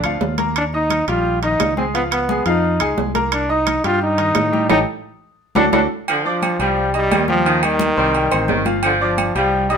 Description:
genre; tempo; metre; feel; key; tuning
latin, salsa; 174 BPM; 4/4; straight; G minor; A4 = 440 Hz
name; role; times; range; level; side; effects
bright trombone; melody; 0.0-9.8 s; D3 to F4; -19 LUFS; equal; none
bright upright piano; accompaniment; 0.0-9.8 s; Eb3 to Eb6; -22 LUFS; left 2 dB; none
fingered electric bass; bass; 0.0-9.8 s; G1 to A2; -24 LUFS; equal; none
claves; percussion; 0.0-9.4 s; none; -27 LUFS; left 5 dB; none
congas; percussion; 0.0-9.8 s; none; -25 LUFS; left 2 dB; none
timbales and agogo bells; percussion; 0.0-9.8 s; none; -24 LUFS; right 7 dB; none
edgy saxophone section; second line; 6.1-9.6 s; Eb3 to G3; -22 LUFS; right 1 dB; none
room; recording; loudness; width
moderate studio reverb, RT60 0.7 s; minimal, uncompressed stereo recording; -15 LUFS; side -6 dB against mid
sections
0.0-6.1 A section; 6.1-9.8 B section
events
band accent 4.7-6.1; drum fill 5.2-6.1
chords
0.0 Bb; 0.6 Ebadd9; 1.9 C#7; 3.3 Cm7; 4.7 Eb; 5.4 D; 6.1 G5; 6.8 Cm; 8.8 G5

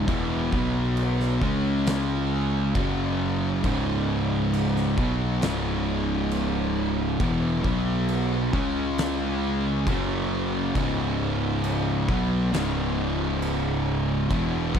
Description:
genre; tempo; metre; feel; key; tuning
stoner and doom metal; 68 BPM; 4/4; straight; C# minor; A4 = 438 Hz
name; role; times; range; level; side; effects
distorted electric guitar; riff; 0.0-14.8 s; C#2 to C#4; -30 LUFS; right 1 dB; overdrive
fuzz guitar; riff; 0.0-14.8 s; C#2 to C#4; -29 LUFS; right 8 dB; distortion
thick fuzz guitar; riff; 0.0-14.8 s; C#2 to C#4; -28 LUFS; left 9 dB; distortion
fuzz picked electric bass; bass; 0.0-14.8 s; C#1 to C#2; -29 LUFS; equal; overdrive
oversized low-tuned drum kit; drums; 0.1-14.8 s; crash cymbal, kick drum, snare drum; -31 LUFS; equal; none
room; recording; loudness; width
little or no reverb; none; -22 LUFS; side -8 dB against mid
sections
0.0-14.8 A section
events
none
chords
0.0 N.C.; 0.5 B5; 1.4 C#5; 2.8 F#5; 3.6 C#m; 7.6 B5; 8.5 C#5; 9.9 F#5; 10.8 C#m

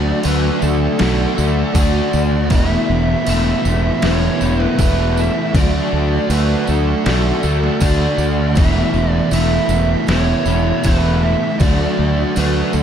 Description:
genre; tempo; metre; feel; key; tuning
rock, shoegaze and dream pop; 79 BPM; 4/4; straight; unclear; A4 = 440 Hz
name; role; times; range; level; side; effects
fuzz lead guitar; melody; 0.0-12.8 s; A4 to E5; -25 LUFS; equal; distortion, tape echo
twelve-string electric guitar; arpeggios; 0.0-12.8 s; E3 to A4; -27 LUFS; right 9 dB; none
overdriven electric guitar; riff; 0.0-12.8 s; E2 to F#4; -21 LUFS; right 12 dB; reverse reverb
overdriven semi-hollow guitar; riff; 0.0-12.8 s; D3 to F#4; -21 LUFS; left 13 dB; ensemble chorus
fuzz fingered electric bass; bass; 0.0-12.8 s; E1 to D2; -18 LUFS; equal; overdrive
detuned 8-bit digital drum machine; drums; 0.2-12.5 s; crash cymbal, kick drum, snare drum; -21 LUFS; equal; none
tambourine; percussion; 0.2-12.8 s; none; -34 LUFS; right 9 dB; none
room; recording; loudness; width
little or no reverb; dark, warm production; -14 LUFS; side -8 dB against mid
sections
0.0-12.8 A section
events
none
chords
0.0 D; 2.5 Esus4; 5.5 D; 8.6 Esus4; 11.6 D

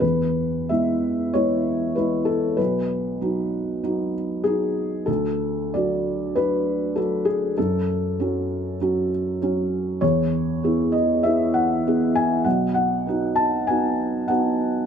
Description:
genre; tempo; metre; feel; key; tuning
neoclassical minimalist piano; 97 BPM; 4/4; rubato; E major; A4 = 440 Hz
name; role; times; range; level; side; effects
felt-muted upright piano; solo; 0.0-14.9 s; B1 to A5; -20 LUFS; equal; none
room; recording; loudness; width
light reverb; close, detailed microphones; -20 LUFS; side -7 dB against mid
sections
0.0-14.9 A section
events
none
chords
0.0 E; 2.6 B; 5.1 D; 7.6 F#m; 10.0 E; 12.5 B

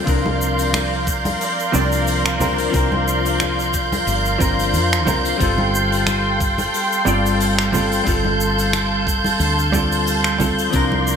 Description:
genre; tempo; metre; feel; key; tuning
sunset chillout; 90 BPM; 4/4; swing 55% on 16ths; G minor; A4 = 440 Hz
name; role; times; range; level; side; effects
vintage hollow-body jazz guitar; accompaniment; 0.0-11.2 s; F3 to D5; -22 LUFS; moving between left 5 dB and right 2 dB; auto-pan, digital delay
dark studio string section; sustained chords; 0.0-11.2 s; A4 to C6; -22 LUFS; right 1 dB; none
wind-like tuned noise texture; texture; 0.0-11.2 s; G6; -24 LUFS; right 1 dB; built-in reverb
woody fretless electric bass; bass; 0.1-11.2 s; G1 to F2; -22 LUFS; equal; analog chorus
electronic kick drum; drums; 0.1-10.9 s; none; -23 LUFS; equal; none
vintage brush drum kit; drums; 0.1-11.2 s; finger snaps, hi-hat, shaker; -26 LUFS; left 1 dB; gated reverb
congas; percussion; 0.3-11.0 s; none; -28 LUFS; equal; none
room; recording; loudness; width
light reverb, small room ambience; bright 1980s-style digital production; -16 LUFS; side -7 dB against mid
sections
0.0-11.2 A section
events
none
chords
0.1 C9sus4; 5.4 G9sus4

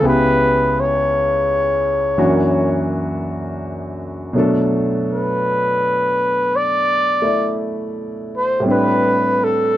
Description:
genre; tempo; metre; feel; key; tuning
jazz ballad; 56 BPM; 4/4; swing 67% on 8ths; unclear; A4 = 439 Hz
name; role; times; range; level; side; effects
breathy trumpet; melody; 0.0-9.8 s; A4 to D5; -16 LUFS; left 1 dB; none
clear concert grand piano; accompaniment; 0.0-9.8 s; C#2 to D5; -19 LUFS; equal; none
room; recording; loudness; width
light reverb; dry, close 1970s-style studio recording; -15 LUFS; side -13 dB against mid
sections
0.0-9.8 A section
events
none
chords
0.0 C#m7b5; 2.2 F#7b13; 4.3 Bm7; 8.7 Am11

